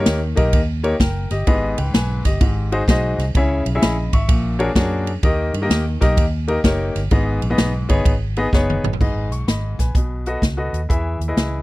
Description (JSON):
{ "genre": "uptempo gospel", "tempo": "128 BPM", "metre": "4/4", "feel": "swing 65% on 8ths", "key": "G# harmonic minor", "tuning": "A4 = 440 Hz", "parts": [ { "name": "warm baby grand piano", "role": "accompaniment", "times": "0.0-11.6 s", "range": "G#2 to C#6", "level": "-22 LUFS", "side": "left 2 dB", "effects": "none" }, { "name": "vintage muted fingered electric bass", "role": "bass", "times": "0.0-11.6 s", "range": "F#1 to G2", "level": "-22 LUFS", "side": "equal", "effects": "none" }, { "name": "swinging big-band drum kit", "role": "drums", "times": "0.1-11.5 s", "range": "crash cymbal, hi-hat, kick drum, ride cymbal, snare drum, toms", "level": "-19 LUFS", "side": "equal", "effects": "none" } ], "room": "little or no reverb", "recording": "dry, close 1970s-style studio recording", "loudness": "-16 LUFS", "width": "side -19 dB against mid", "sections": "0.0-9.0 A section; 9.0-11.6 B section", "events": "drum fill 8.5-9.0", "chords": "0.0 D#; 1.5 G#m; 2.4 G#7; 3.4 C#m; 4.3 A#7alt; 5.2 D#; 7.1 G#m; 9.9 B7; 10.9 E" }